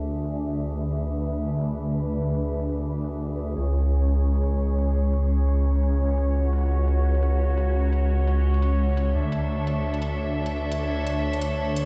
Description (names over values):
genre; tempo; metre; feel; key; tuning
half-time drum and bass; 172 BPM; 4/4; swing 53% on 16ths, half-time; C# phrygian; A4 = 438 Hz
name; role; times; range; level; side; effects
clear symphonic string section; sustained chords; 0.0-11.9 s; A3 to E5; -33 LUFS; equal; none
phased detuned saw bass; bass; 0.0-11.9 s; C#2 to D2; -25 LUFS; equal; phaser
metallic inharmonic drone; texture; 0.0-11.9 s; G#4 to C#5; -38 LUFS; equal; chorus, built-in reverb, phaser
electronic hi-hat; drums; 0.2-11.8 s; none; -47 LUFS; equal; none
room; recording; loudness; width
digital ambience; played on a big sound system in a bare room, stone room reverb, low-pass filter, small room reverb; -25 LUFS; mono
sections
0.0-11.9 A section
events
filter sweep 0.0-11.9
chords
0.0 D5; 3.6 C#5; 9.1 D5